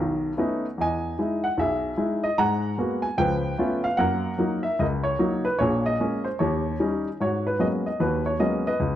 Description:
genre	solo jazz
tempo	150 BPM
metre	4/4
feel	swing 64% on 8ths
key	G# minor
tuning	A4 = 441 Hz
part	warm baby grand piano	solo	0.0-9.0 s	A#1 to A#5	-22 LUFS	equal	none
room	moderate large studio reverb, RT60 1.4 s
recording	dark, warm production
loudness	-22 LUFS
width	side -12 dB against mid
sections	0.0-7.2 A section; 7.2-9.0 B section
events	none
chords	0.0 B9; 0.8 Emaj7; 2.4 G#m9; 3.2 C#aug7; 4.0 F#6; 5.6 A#m11; 6.4 D#7; 7.2 G#m11

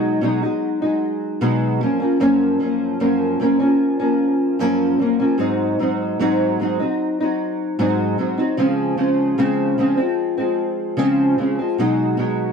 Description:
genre	indie pop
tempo	75 BPM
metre	4/4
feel	straight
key	Db major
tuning	A4 = 440 Hz
part	nylon-string guitar	solo	0.0-12.5 s	Gb2 to Eb4	-17 LUFS	equal	analog chorus, warbly pitch drift
room	wet booth ambience, RT60 0.2 s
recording	dry, close 1970s-style studio recording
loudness	-17 LUFS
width	side -6 dB against mid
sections	0.0-8.6 A section; 8.6-12.5 A section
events	none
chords	0.0 Cb6; 1.8 Gbmaj7; 5.4 Ab7; 8.6 Dbmaj7; 11.8 Cb6

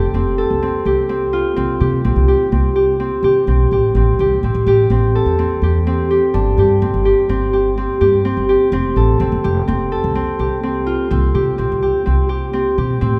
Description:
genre	contemporary instrumental, chamber music in an uneven meter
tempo	126 BPM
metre	5/4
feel	straight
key	unclear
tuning	A4 = 440 Hz
part	Celtic harp	arpeggios	0.0-13.2 s	C4 to A4	-18 LUFS	equal	none
part	upright bass	bass	0.0-13.2 s	F1 to C3	-20 LUFS	equal	none
room	wet recital hall reverb, RT60 1.4 s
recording	heard from further back in the room, faint mains hum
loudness	-16 LUFS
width	mono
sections	0.0-13.2 A section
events	none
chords	0.0 F; 1.6 C5; 4.0 Am7; 6.3 Gsus4; 8.7 F; 11.1 C5

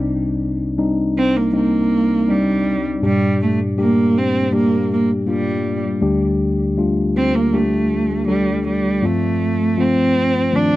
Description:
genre	pop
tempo	80 BPM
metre	4/4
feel	straight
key	G minor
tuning	A4 = 440 Hz
part	mellow tine electric piano	accompaniment	0.0-10.8 s	C2 to A4	-18 LUFS	left 2 dB	none
part	rich cello	melody	1.2-10.8 s	G3 to D4	-18 LUFS	right 2 dB	none
room	light reverb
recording	dry, close 1970s-style studio recording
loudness	-15 LUFS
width	side -16 dB against mid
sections	0.0-9.0 A section; 9.0-10.8 B section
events	none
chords	0.0 Cmadd9; 3.0 Gm; 6.0 Dsus4; 9.0 F/G

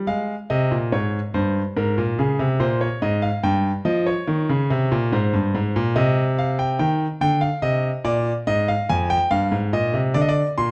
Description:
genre	classical, baroque-style two-part invention for grand piano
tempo	72 BPM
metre	4/4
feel	straight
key	Ab major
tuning	A4 = 439 Hz
part	bright concert grand piano	solo	0.0-10.7 s	F2 to C6	-21 LUFS	equal	none
room	moderate recital hall reverb, RT60 1.6 s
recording	close, detailed microphones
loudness	-21 LUFS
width	mono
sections	0.1-10.7 A section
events	none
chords	0.1 Ab; 1.8 Bbm7/Ab; 3.4 Eb/G; 5.1 Ab; 6.8 Eb; 8.5 Fm7; 10.1 Bb

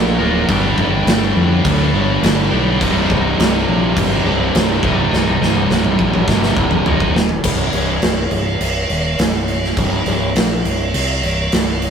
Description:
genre	hard rock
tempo	104 BPM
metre	4/4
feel	straight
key	C minor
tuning	A4 = 440 Hz
part	heavy high-gain guitar	riff	0.0-7.2 s	C2 to Bb4	-19 LUFS	equal	distortion
part	overdriven semi-hollow guitar	riff	0.0-10.3 s	C2 to Bb3	-20 LUFS	equal	none
part	fingered electric bass	bass	0.0-11.9 s	C1 to F2	-20 LUFS	left 1 dB	none
part	big rock drum kit	drums	0.5-11.9 s	crash cymbal, kick drum, snare drum, toms	-17 LUFS	right 1 dB	none
room	light reverb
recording	rough rehearsal-room recording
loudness	-13 LUFS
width	side -7 dB against mid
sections	0.0-7.4 A section; 7.4-11.9 B section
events	drum fill 5.1-7.4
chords	0.5 G; 2.8 Cm; 7.4 C5

